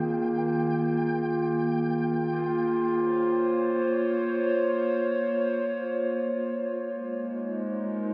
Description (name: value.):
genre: IDM.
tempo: free time.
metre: none.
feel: none.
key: Bb dorian.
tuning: A4 = 445 Hz.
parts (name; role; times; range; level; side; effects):
warbly tape-like pad; sustained chords; 0.0-8.1 s; Eb3 to Db5; -27 LUFS; equal; chorus, built-in reverb, vintage 12-bit sampler grit.
flickering grainy texture; texture; 0.0-2.4 s; G5; -40 LUFS; equal; built-in reverb.
room: moderate plate reverb, RT60 2.9 s.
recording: none.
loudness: -27 LUFS.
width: mono.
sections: 0.0-2.3 A section; 2.3-8.1 B section.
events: none.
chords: 0.0 Ebsus4; 2.3 Bbm7; 6.9 Absus2.